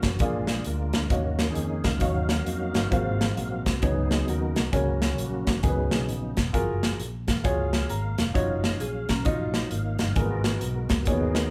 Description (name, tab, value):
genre	uptempo gospel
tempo	132 BPM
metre	4/4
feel	swing 64% on 8ths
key	F# major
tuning	A4 = 440 Hz
part	tonewheel organ	sustained chords	0.0-11.5 s	F#3 to E#5	-34 LUFS	equal	slow rotary speaker, chorus vibrato
part	fingered electric bass	bass	0.0-11.5 s	E#1 to E#2	-32 LUFS	equal	none
part	modern studio drum kit	drums	0.0-11.4 s	hi-hat, kick drum, snare drum	-29 LUFS	equal	none
part	dark upright piano	accompaniment	0.2-11.5 s	G#2 to A#5	-32 LUFS	equal	none
part	mellow electric guitar	second line	8.8-10.0 s	C#4 to C#5	-38 LUFS	equal	none
room	light reverb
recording	band playing live in one room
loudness	-26 LUFS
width	mono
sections	0.0-11.5 A section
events	tonewheel organ solo 0.0-11.5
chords	0.2 A#7; 1.1 D#m9; 2.9 G#13; 3.8 C#9sus4; 4.7 F#/C#; 5.6 C#7sus4; 6.5 F#maj9; 8.3 D#m9/F#; 10.2 G#m9